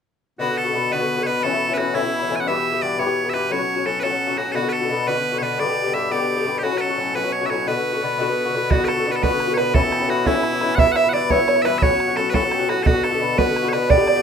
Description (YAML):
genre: celtic folk, Celtic jig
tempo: 116 BPM (dotted quarters)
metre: 6/8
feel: straight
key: B minor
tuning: A4 = 441 Hz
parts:
  - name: loud bright bagpipes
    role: melody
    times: 0.4-14.2 s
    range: E4 to G#5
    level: -22 LUFS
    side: right 2 dB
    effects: none
  - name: Irish bouzouki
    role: accompaniment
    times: 0.4-14.2 s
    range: G2 to G4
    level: -22 LUFS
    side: left 4 dB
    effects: none
  - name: accordion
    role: drone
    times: 0.4-14.2 s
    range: B2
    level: -31 LUFS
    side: left 3 dB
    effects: none
  - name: open-back banjo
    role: second line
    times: 8.7-14.2 s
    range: E4 to E5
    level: -22 LUFS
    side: right 4 dB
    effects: none
  - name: bodhran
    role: percussion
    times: 8.7-14.2 s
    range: none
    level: -21 LUFS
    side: right 3 dB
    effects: none
room: wet studio reverb, RT60 0.5 s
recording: minimal, uncompressed stereo recording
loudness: -18 LUFS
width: side -7 dB against mid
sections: 0.4-8.7 A section; 8.7-14.2 A section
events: none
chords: 0.4 Bm; 1.4 A; 2.5 Em; 3.5 F#m; 4.6 Bm; 5.6 G; 6.6 F#m; 7.7 Bm; 9.7 A; 10.8 Em; 11.8 F#m; 12.9 Bm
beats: | 0.40 0.92 | 1.44 1.96 | 2.48 3.00 | 3.52 4.04 | 4.55 5.07 | 5.59 6.11 | 6.63 7.15 | 7.67 8.19 | 8.71 9.23 | 9.75 10.27 | 10.79 11.30 | 11.82 12.34 | 12.86 13.38 | 13.90